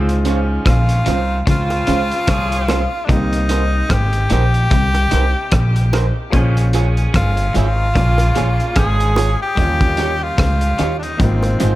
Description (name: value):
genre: lovers rock reggae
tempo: 74 BPM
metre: 4/4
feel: swing 58% on 16ths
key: Bb dorian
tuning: A4 = 442 Hz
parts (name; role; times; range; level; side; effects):
- bright saxophone section; second line; 0.0-9.4 s; Ab2 to Db5; -26 LUFS; right 2 dB; none
- warm concert grand piano; accompaniment; 0.0-11.8 s; G3 to C5; -28 LUFS; equal; none
- twangy electric guitar; riff; 0.0-11.7 s; G2 to Eb3; -27 LUFS; left 5 dB; none
- upright bass; bass; 0.0-11.8 s; G1 to Eb2; -17 LUFS; equal; none
- crunchy breakbeat drum kit; drums; 0.1-11.8 s; hi-hat, kick drum, rim click; -20 LUFS; equal; none
- electric guitar through a small old amp; stabs; 0.3-11.7 s; Db4 to Db5; -24 LUFS; right 6 dB; none
- breathy tenor saxophone; melody; 0.7-11.8 s; C4 to Ab4; -21 LUFS; left 1 dB; tape echo
- bongos; percussion; 1.7-11.6 s; none; -26 LUFS; right 1 dB; none
room: small room ambience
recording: none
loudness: -14 LUFS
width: side -16 dB against mid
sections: 0.0-11.8 A section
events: none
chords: 0.0 Dbmaj7; 3.1 Cm7; 6.3 Bbm7; 9.6 Eb7; 11.2 Ab6